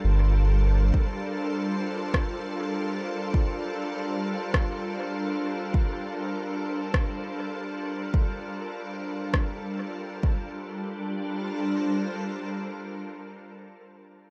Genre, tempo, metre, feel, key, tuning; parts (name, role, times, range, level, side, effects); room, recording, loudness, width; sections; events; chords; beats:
ambient dub; 100 BPM; 4/4; swing 56% on 16ths; G minor; A4 = 440 Hz
soft additive organ-like pad; sustained chords; 0.0-13.7 s; G3 to C5; -32 LUFS; equal; ensemble chorus, built-in reverb
warm sub bass; bass; 0.0-0.9 s; G1; -22 LUFS; equal; tube saturation
electronic kick drum; drums; 0.9-10.4 s; -27 LUFS; equal; overdrive
electronic rim click; drums; 2.1-9.5 s; -34 LUFS; equal; overdrive, dub echo
light reverb, digital ambience; dark, warm production; -28 LUFS; mono
0.0-10.5 A section; 10.5-12.9 B section
0.0 Gm11; 10.2 G5; 10.5 Gm11
0.34 | 0.94 1.54 2.14 2.74 | 3.34 3.94 4.54 5.14 | 5.74 6.34 6.94 7.54 | 8.14 8.74 9.34 9.94 | 10.54 11.14 11.74 12.34